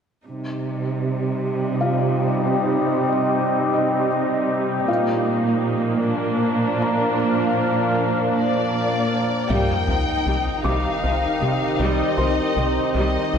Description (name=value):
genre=cinematic, hybrid orchestral and electronic film score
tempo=52 BPM (dotted quarters)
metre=6/8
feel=straight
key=C minor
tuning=A4 = 439 Hz
part: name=clear symphonic viola section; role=accompaniment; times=0.3-13.4 s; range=F3 to Eb4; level=-24 LUFS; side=right 1 dB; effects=low-pass filter
part: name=deep dark ambient pad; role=sustained chords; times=1.3-13.4 s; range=Eb3 to F5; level=-23 LUFS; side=equal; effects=chorus, built-in reverb, low-pass filter
part: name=warm symphonic cello section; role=bass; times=0.3-13.4 s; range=Bb2 to C3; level=-26 LUFS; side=right 3 dB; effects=none
part: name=felt-muted upright piano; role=texture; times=1.8-13.4 s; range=F4 to D6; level=-29 LUFS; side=left 2 dB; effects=ping-pong delay
part: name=warm symphonic violin section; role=melody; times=8.3-13.4 s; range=D5 to G5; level=-26 LUFS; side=left 5 dB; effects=low-pass filter
part: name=rubbery square bass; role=riff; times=9.5-13.4 s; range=C2 to C3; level=-25 LUFS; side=left 2 dB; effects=low-pass filter
part: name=sub drop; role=sound effects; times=9.5-11.8 s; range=none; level=-30 LUFS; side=equal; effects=none
room=wet scoring stage reverb, RT60 2.0 s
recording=none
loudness=-18 LUFS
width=side -7 dB against mid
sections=0.3-9.5 A section; 9.5-13.4 B section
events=filter sweep 0.3-9.5; impact 9.5-11.8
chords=0.3 Cm; 4.9 Bb; 9.5 Cm